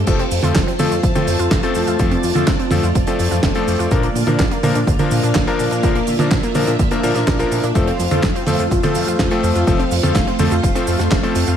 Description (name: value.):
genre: italo disco.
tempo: 125 BPM.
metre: 4/4.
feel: straight.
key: F major.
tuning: A4 = 440 Hz.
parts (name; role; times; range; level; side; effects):
string machine, full ensemble; sustained chords; 0.0-11.6 s; A3 to A5; -22 LUFS; equal; phaser, ensemble chorus.
wide unison pluck; arpeggios; 0.0-11.6 s; D3 to F4; -25 LUFS; right 3 dB; tape echo.
chorused synth bass; bass; 0.0-11.6 s; F1 to Bb2; -21 LUFS; equal; none.
bright electric grand piano; stabs; 0.1-11.6 s; F3 to Bb4; -21 LUFS; left 4 dB; tape echo.
damped 70s drum kit; drums; 0.1-11.6 s; cabasa, crash cymbal, handclaps, hi-hat, snare drum, toms; -21 LUFS; right 3 dB; small room ambience, gated reverb.
electronic kick drum; drums; 0.1-11.2 s; none; -20 LUFS; equal; small room ambience.
room: light reverb, studio reverb.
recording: none.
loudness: -14 LUFS.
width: side -9 dB against mid.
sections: 0.1-11.6 A section.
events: none.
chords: 0.1 F; 3.9 Bb; 7.8 F.